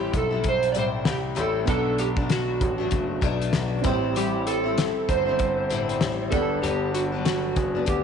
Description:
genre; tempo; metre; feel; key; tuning
indie pop, bedroom pop; 97 BPM; 4/4; swing 60% on 16ths; A dorian; A4 = 439 Hz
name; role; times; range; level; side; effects
electric slide guitar; melody; 0.0-8.0 s; F#4 to D5; -26 LUFS; right 2 dB; lush chorus, slapback echo
picked steel-string acoustic guitar; accompaniment; 0.0-8.0 s; G2 to E4; -29 LUFS; left 8 dB; lush chorus, warbly pitch drift
soft electric-piano-like synth keys; accompaniment; 0.0-8.0 s; B3 to F#5; -32 LUFS; right 14 dB; chorus, cassette tape
clear concert grand piano; bass; 0.0-8.0 s; F#1 to D2; -29 LUFS; left 1 dB; none
loose indie drum kit; drums; 0.1-8.0 s; hi-hat, kick drum, snare drum; -28 LUFS; left 2 dB; none
room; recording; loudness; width
light reverb, small room ambience; 1960s-style stereo with parts hard left and right, nothing above 11.0 kHz; -22 LUFS; side -7 dB against mid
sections
0.0-8.0 A section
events
none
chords
0.0 Am7; 1.7 Bm7; 3.9 Am7; 6.3 Gmaj7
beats
0.45 1.06 | 1.68 2.30 2.92 3.54 | 4.16 4.78 5.40 6.02 | 6.63 7.25 7.87

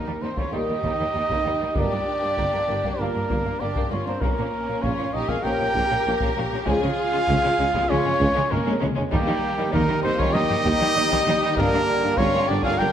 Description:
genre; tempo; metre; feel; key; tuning
cinematic, epic orchestral film score; 98 BPM; 4/4; straight; Eb mixolydian; A4 = 440 Hz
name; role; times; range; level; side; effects
warm symphonic violin section; melody; 0.0-12.9 s; Bb3 to Bb4; -30 LUFS; left 4 dB; none
rich symphonic viola section; accompaniment; 0.0-12.9 s; G3 to G4; -31 LUFS; equal; none
mellow trumpet; stabs; 0.0-12.9 s; G4 to G5; -24 LUFS; right 2 dB; none
rich symphonic violin section; second line; 0.1-12.9 s; G3 to Eb4; -32 LUFS; left 3 dB; none
rich symphonic cello section; bass; 0.1-12.9 s; Eb2 to Eb3; -31 LUFS; right 2 dB; none
dark tuba; bass; 0.2-12.9 s; G1 to Eb2; -31 LUFS; right 2 dB; none
rich symphonic double bass section; bass; 0.2-12.9 s; G1 to Eb2; -32 LUFS; right 2 dB; none
taiko ensemble; drums; 0.4-12.9 s; none; -30 LUFS; left 1 dB; none
mellow French horn section; sustained chords; 0.5-12.9 s; D3 to Bb4; -31 LUFS; left 3 dB; none
mellow trombone section; sustained chords; 0.5-12.9 s; Bb2 to G3; -34 LUFS; right 3 dB; none
room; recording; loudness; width
moderate scoring stage reverb, RT60 2.0 s; none; -20 LUFS; side -9 dB against mid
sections
0.0-12.9 A section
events
drum fill 8.5-9.1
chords
0.0 Eb; 1.8 Gm; 4.2 Bbm; 6.7 Db; 9.1 Eb; 11.6 Gm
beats
0.53 1.14 | 1.76 2.38 2.99 3.61 | 4.22 4.84 5.45 6.06 | 6.68 7.29 7.90 8.51 | 9.12 9.73 10.35 10.96 | 11.57 12.18 12.80

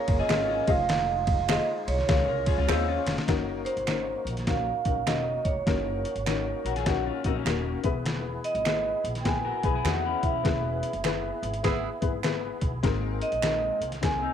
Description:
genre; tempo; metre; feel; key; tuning
uptempo 1960s-style soul; 100 BPM; 4/4; swing 64% on 8ths; unclear; A4 = 444 Hz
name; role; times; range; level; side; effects
vibraphone with medium mallets; melody; 0.0-14.3 s; C5 to G#5; -29 LUFS; right 4 dB; none
warm upright piano; accompaniment; 0.0-14.3 s; Ab2 to F5; -33 LUFS; left 12 dB; none
percussive tonewheel organ; sustained chords; 0.0-14.3 s; Ab3 to Ab4; -40 LUFS; right 3 dB; overdrive, chorus vibrato, stopped rotary speaker
electric guitar at the edge of break-up; riff; 0.0-14.3 s; Bb3 to Db5; -33 LUFS; left 14 dB; none
upright bass; bass; 0.1-14.2 s; Eb1 to E2; -33 LUFS; equal; none
trip hop sampler-style drum kit; drums; 0.1-14.2 s; hi-hat, kick drum, ride cymbal, snare drum; -29 LUFS; equal; none
finger snaps; percussion; 0.3-13.6 s; none; -36 LUFS; right 14 dB; none
warm horn section; second line; 11.6-11.9 s; B3 to G#4; -33 LUFS; right 13 dB; none
room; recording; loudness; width
light reverb, small room reverb; 1960s-style stereo with parts hard left and right; -24 LUFS; side -9 dB against mid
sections
0.0-3.3 A section; 3.3-14.3 B section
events
drum fill 2.7-3.3; band accent 10.4-12.8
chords
0.0 Bbm7; 0.6 Fm7; 3.3 Gb6; 7.8 E; 12.8 Abadd9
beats
0.30 | 0.89 1.49 2.08 2.68 | 3.28 3.88 4.47 5.07 | 5.67 6.26 6.86 7.46 | 8.06 8.65 9.25 9.85 | 10.45 11.04 11.64 12.24 | 12.83 13.43 14.03

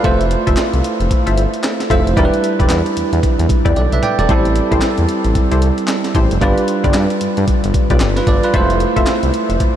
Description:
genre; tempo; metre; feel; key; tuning
R&B, new jack swing; 113 BPM; 4/4; swing 60% on 16ths; A minor; A4 = 440 Hz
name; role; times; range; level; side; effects
bell-like tine electric piano; accompaniment; 0.0-9.8 s; G3 to G5; -17 LUFS; right 3 dB; lush chorus
funky polysynth comp; stabs; 0.0-9.1 s; E4 to E5; -22 LUFS; left 2 dB; chorus, ping-pong delay
smooth synth bass; bass; 0.0-9.7 s; E1 to G2; -17 LUFS; equal; none
breakbeat sampler-style drum kit; drums; 0.0-9.8 s; handclaps, hi-hat, kick drum, snare drum, toms; -18 LUFS; equal; none
room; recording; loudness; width
moderate huge ambient reverb, RT60 8.2 s; dreamy mix soaked in reverb; -12 LUFS; side -10 dB against mid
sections
0.0-9.8 A section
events
drum fill 3.8-4.3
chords
0.0 Fmaj7; 2.2 Em7; 4.3 Am7; 6.4 G7; 8.5 Fmaj7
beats
| 0.04 0.57 1.10 1.64 | 2.17 2.70 3.23 3.76 | 4.29 4.82 5.35 5.88 | 6.41 6.95 7.48 8.01 | 8.54 9.07 9.60

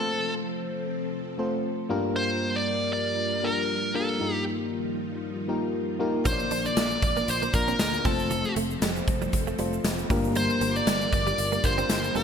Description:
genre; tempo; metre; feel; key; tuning
1980s-style pop; 117 BPM; 4/4; swing 55% on 16ths; unclear; A4 = 441 Hz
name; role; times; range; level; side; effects
dark smooth lead guitar; melody; 0.0-12.2 s; A4 to D5; -28 LUFS; right 1 dB; overdrive, ping-pong delay
mellow FM electric piano; accompaniment; 0.0-12.2 s; G2 to D5; -29 LUFS; left 2 dB; chorus
string machine, cellos; sustained chords; 0.0-12.2 s; F3 to Bb4; -34 LUFS; right 1 dB; ensemble chorus
warm studio violin section; second line; 6.3-12.2 s; A5 to D6; -35 LUFS; left 3 dB; ping-pong delay
direct-recorded clean electric guitar; riff; 6.3-12.2 s; F3 to D4; -35 LUFS; right 8 dB; ensemble chorus
fingered electric bass; bass; 6.3-12.2 s; F1 to D2; -33 LUFS; right 1 dB; none
big rock drum kit; drums; 6.3-12.2 s; hi-hat, kick drum, snare drum, tambourine; -28 LUFS; equal; gated reverb
egg shaker; percussion; 6.3-12.2 s; none; -44 LUFS; right 10 dB; none
room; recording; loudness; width
moderate lush hall reverb, RT60 1.6 s, small room ambience; bright 1980s-style digital production; -24 LUFS; side -7 dB against mid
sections
0.0-12.2 A section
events
none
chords
0.0 F; 1.9 Gm7; 4.2 Ebadd9/G; 6.3 Bb; 8.1 F; 10.1 Gm7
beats
| 0.10 0.61 1.13 1.64 | 2.15 2.67 3.18 3.69 | 4.20 4.72 5.23 5.74 | 6.25 6.77 7.28 7.79 | 8.31 8.82 9.33 9.85 | 10.36 10.87 11.38 11.90

